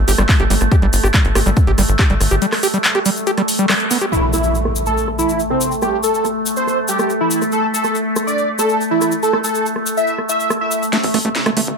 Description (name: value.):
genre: psychedelic trance.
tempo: 141 BPM.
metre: 4/4.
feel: straight.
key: unclear.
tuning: A4 = 439 Hz.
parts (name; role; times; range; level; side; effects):
overtone-sweeping drone; sustained chords; 0.0-11.8 s; A3; -21 LUFS; equal; chorus, built-in reverb, sidechain pumping.
tight sequencer bass; bass; 0.0-2.4, 11.0-11.7 s; G1 to A1; -17 LUFS; equal; high-pass filter.
overdriven acid bass; riff; 0.1-4.1, 10.9-11.6 s; G3 to G4; -20 LUFS; moving between left 3 dB and right 4 dB; distortion, auto-pan, sidechain pumping, dub echo.
drum and bass drum kit; drums; 0.1-11.8 s; handclaps, hi-hat, rim click, snare drum; -20 LUFS; equal; overdrive, high-pass filter on snare, low-pass filter on snare, high-pass filter on hats, low-pass filter on hats, high-pass filter on room, low-pass filter on room.
egg shaker; percussion; 0.1-10.9 s; none; -25 LUFS; left 6 dB; none.
electronic kick drum; drums; 0.3-2.1 s; none; -14 LUFS; equal; none.
wide unison lead; melody; 4.1-10.8 s; C4 to E5; -18 LUFS; right 1 dB; phaser, sidechain pumping, dub echo.
impact and riser; sound effects; 4.1-5.8, 11.3-11.8 s; none; -23 LUFS; equal; none.
room: light reverb.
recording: none.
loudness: -14 LUFS.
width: side -5 dB against mid.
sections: 0.0-4.1 A section; 4.1-10.9 B section.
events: break 2.4-4.1; band accent 3.7; impact 4.1-5.8; drum fill 10.9-11.8; riser 11.3-11.8.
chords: 0.0 Gsus2; 4.1 N.C..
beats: 0.29 | 0.72 1.14 1.57 1.99 | 2.42 2.84 3.27 3.69 | 4.12 4.55 4.97 5.40 | 5.82 6.25 6.67 7.10 | 7.52 7.95 8.38 8.80 | 9.23 9.65 10.08 10.50 | 10.93 11.35.